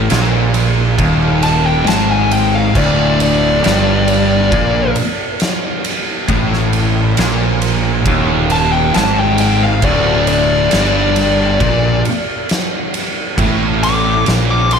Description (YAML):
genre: stoner and doom metal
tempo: 68 BPM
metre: 4/4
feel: straight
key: unclear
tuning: A4 = 440 Hz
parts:
  - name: crunchy overdriven guitar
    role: riff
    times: 0.0-14.8 s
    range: D2 to Bb2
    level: -20 LUFS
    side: equal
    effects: none
  - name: thick fuzz guitar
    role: riff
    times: 0.0-14.8 s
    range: D2 to Bb2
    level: -20 LUFS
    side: left 9 dB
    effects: distortion
  - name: thick fuzz guitar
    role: riff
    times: 0.0-14.8 s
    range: D2 to Bb2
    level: -18 LUFS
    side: right 8 dB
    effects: distortion
  - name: fuzz fingered electric bass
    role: bass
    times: 0.0-14.8 s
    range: D1 to Bb1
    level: -19 LUFS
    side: equal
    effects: overdrive
  - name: oversized low-tuned drum kit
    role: drums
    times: 0.1-14.8 s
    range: crash cymbal, kick drum, ride cymbal, snare drum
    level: -18 LUFS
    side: right 1 dB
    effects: none
  - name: fuzz lead guitar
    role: melody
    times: 1.4-14.8 s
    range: D5 to D6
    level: -17 LUFS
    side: left 3 dB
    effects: distortion, tape echo
room: moderate large studio reverb, RT60 0.9 s, studio reverb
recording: none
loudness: -11 LUFS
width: side -6 dB against mid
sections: 0.0-14.8 A section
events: lead electric guitar solo 0.0-14.8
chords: 0.0 D5